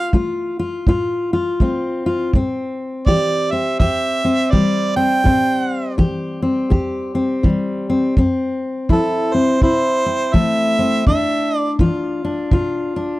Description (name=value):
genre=acoustic country blues, solo or duo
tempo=82 BPM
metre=4/4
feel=swing 61% on 8ths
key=A minor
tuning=A4 = 441 Hz
part: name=warm harmonica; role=melody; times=0.0-11.8 s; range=A4 to G5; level=-19 LUFS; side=right 3 dB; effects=none
part: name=fingerpicked steel-string acoustic guitar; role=accompaniment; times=0.0-13.2 s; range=E2 to G4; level=-18 LUFS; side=left 2 dB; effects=none
part: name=kick drum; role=drums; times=0.1-12.7 s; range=none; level=-16 LUFS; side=equal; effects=none
room=small room ambience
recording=dry, close 1970s-style studio recording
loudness=-15 LUFS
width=side -18 dB against mid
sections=0.0-13.2 A section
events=none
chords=0.0 Dm7 (rootless); 2.3 Am7; 8.2 Fmaj7; 11.1 E7(no3)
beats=0.13 0.86 1.60 | 2.33 3.06 3.79 4.52 | 5.25 5.98 6.71 7.44 | 8.16 8.89 9.62 10.34 | 11.06 11.79 12.51